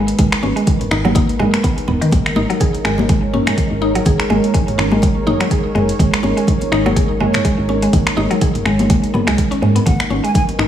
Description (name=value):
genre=afro house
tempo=124 BPM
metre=4/4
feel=swing 56% on 16ths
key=G# minor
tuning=A4 = 437 Hz
part: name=dark analog pad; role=sustained chords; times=0.0-10.7 s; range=G#3 to C#5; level=-22 LUFS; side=right 1 dB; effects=chorus, sidechain pumping
part: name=mallet-like synth pluck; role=arpeggios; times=0.0-10.7 s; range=D#3 to G#4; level=-19 LUFS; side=equal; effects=chorus, sidechain pumping, digital delay
part: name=woody FM bass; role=bass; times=0.0-10.7 s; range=D#1 to G#2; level=-21 LUFS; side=equal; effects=sidechain pumping
part: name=deep house drum kit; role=drums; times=0.1-10.7 s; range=finger snaps, hi-hat, toms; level=-23 LUFS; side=equal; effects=none
part: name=electronic kick drum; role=drums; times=0.2-10.5 s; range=none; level=-17 LUFS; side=equal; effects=overdrive
part: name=congas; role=percussion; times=0.2-10.6 s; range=none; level=-22 LUFS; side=left 2 dB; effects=none
part: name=breathy jazz flute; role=melody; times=9.9-10.4 s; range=F#5 to G#5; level=-23 LUFS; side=right 1 dB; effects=digital delay
room=light reverb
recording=studio reverb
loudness=-13 LUFS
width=side -10 dB against mid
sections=0.0-10.7 A section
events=none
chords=0.0 G#m